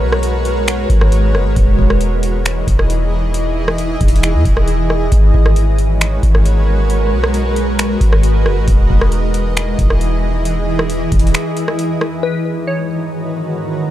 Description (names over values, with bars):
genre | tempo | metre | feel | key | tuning
hip hop, atmospheric cloud-rap | 135 BPM | 4/4 | half-time | G# minor | A4 = 438 Hz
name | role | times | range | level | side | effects
granular cloud pad | sustained chords | 0.0-13.9 s | G#2 to A#5 | -18 LUFS | equal | built-in reverb, sidechain pumping
soft 808-style bass | bass | 0.0-11.3 s | E1 to E2 | -15 LUFS | equal | none
booming analog drum machine | drums | 0.1-12.1 s | finger snaps, hi-hat, kick drum, rim click | -14 LUFS | equal | none
glassy wavetable pluck | melody | 12.2-13.5 s | B4 to C#5 | -22 LUFS | left 3 dB | chorus, low-pass filter, digital delay
room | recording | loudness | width
little or no reverb | dark, warm production | -12 LUFS | side -13 dB against mid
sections
0.0-12.2 A section; 12.2-13.9 B section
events
break 11.3-12.2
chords
0.0 G#m11; 1.6 Emaj7; 5.1 G#m11; 8.7 Emaj7; 12.2 G#m11